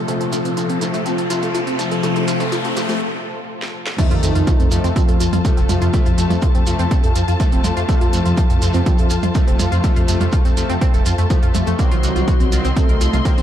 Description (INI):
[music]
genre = melodic techno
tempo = 123 BPM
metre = 4/4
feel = straight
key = unclear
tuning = A4 = 440 Hz
[part]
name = dark studio string section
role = sustained chords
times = 0.0-13.4 s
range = C3 to C6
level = -28 LUFS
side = left 2 dB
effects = sidechain pumping
[part]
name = tight sequenced synth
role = arpeggios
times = 0.0-13.4 s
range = F3 to Bb4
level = -25 LUFS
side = equal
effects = chorus, sidechain pumping, tape echo
[part]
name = analog synth brass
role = stabs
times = 0.0-13.4 s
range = C3 to C4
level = -26 LUFS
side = left 3 dB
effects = chorus, sidechain pumping, tape echo
[part]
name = analog drone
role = drone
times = 0.0-3.0 s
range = Bb2 to F3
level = -39 LUFS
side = left 3 dB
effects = none
[part]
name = riser and impact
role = sound effects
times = 0.0-5.9 s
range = none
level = -28 LUFS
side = equal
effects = none
[part]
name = analog synth brass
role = melody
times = 0.1-13.4 s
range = Eb3 to A4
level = -24 LUFS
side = left 1 dB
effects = chorus, dub echo
[part]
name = techno drum kit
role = drums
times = 0.1-13.4 s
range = crash cymbal, hi-hat, percussion blips, snare drum, toms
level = -28 LUFS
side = right 2 dB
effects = high-pass filter on hats, high-pass filter on toms, high-pass filter on perc, high-pass filter on snare, high-pass filter on cymbals, high-pass filter on room
[part]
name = shekere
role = percussion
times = 0.1-13.4 s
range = none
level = -32 LUFS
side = right 4 dB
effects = none
[part]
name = electronic kick drum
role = drums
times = 4.0-13.4 s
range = none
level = -16 LUFS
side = equal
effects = none
[part]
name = dark detuned saw bass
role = bass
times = 4.1-13.4 s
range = F1 to F2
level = -19 LUFS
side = equal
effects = sidechain pumping
[sound]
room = light reverb, digital ambience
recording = dark, warm production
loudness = -14 LUFS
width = side -10 dB against mid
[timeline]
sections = 0.0-4.0 A section; 4.0-13.4 B section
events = build-up 0.0-4.0; drum fill 0.0-3.0, 3.6-4.0; riser 0.0-3.0; filter sweep on analog polysynth 0.0-4.0; break 3.0-4.0; drop 4.0-13.4; impact 4.0-5.9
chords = 0.0 F; 11.8 Cdim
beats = | 0.08 0.57 1.06 1.55 | 2.03 2.52 3.01 3.50 | 3.98 4.47 4.96 5.45 | 5.94 6.42 6.91 7.40 | 7.89 8.38 8.86 9.35 | 9.84 10.33 10.81 11.30 | 11.79 12.28 12.77 13.25